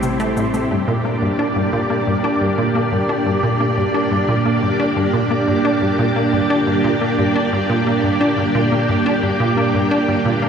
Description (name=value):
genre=ambient, sequencer-driven space music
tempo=88 BPM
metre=4/4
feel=straight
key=G minor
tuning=A4 = 440 Hz
part: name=string machine, full ensemble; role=sustained chords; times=0.0-10.5 s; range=A3 to D5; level=-18 LUFS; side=right 1 dB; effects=ensemble chorus, shimmer reverb
part: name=resonant blip pluck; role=riff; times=0.0-10.5 s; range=G2 to D4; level=-18 LUFS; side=equal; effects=chorus, tape echo, shimmer reverb
part: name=warm sub bass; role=bass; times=0.0-0.7 s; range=A1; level=-32 LUFS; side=equal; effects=none
part: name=cabasa and congas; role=percussion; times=0.0-0.7 s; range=none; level=-36 LUFS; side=left 2 dB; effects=overdrive, tape echo
part: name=wind-like tuned noise texture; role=texture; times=0.0-10.5 s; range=C5 to D5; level=-33 LUFS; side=left 1 dB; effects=none
room=wet huge ambient reverb, RT60 9.7 s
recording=played on a big sound system in a bare room, large studio reverb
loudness=-15 LUFS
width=side -7 dB against mid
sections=0.7-10.5 A section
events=none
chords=0.0 Am; 0.7 Gm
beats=0.03 | 0.71 1.39 2.07 2.75 | 3.44 4.12 4.80 5.48 | 6.16 6.85 7.53 8.21 | 8.89 9.57 10.26